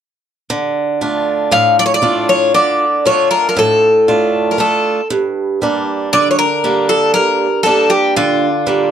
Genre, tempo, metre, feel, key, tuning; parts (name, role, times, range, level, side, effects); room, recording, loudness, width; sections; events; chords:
greek folk, Greek bouzouki band; 117 BPM (eighths); 9/8; straight; D harmonic minor; A4 = 439 Hz
picked swing-style acoustic guitar; accompaniment; 0.5-8.9 s; G2 to F4; -16 LUFS; right 3 dB
Greek bouzouki; melody; 1.5-8.9 s; F4 to F5; -12 LUFS; left 2 dB
moderate small room reverb, RT60 0.5 s; -11 LUFS; side -9 dB against mid
0.5-8.9 A section
0.5 Dm; 5.1 Gm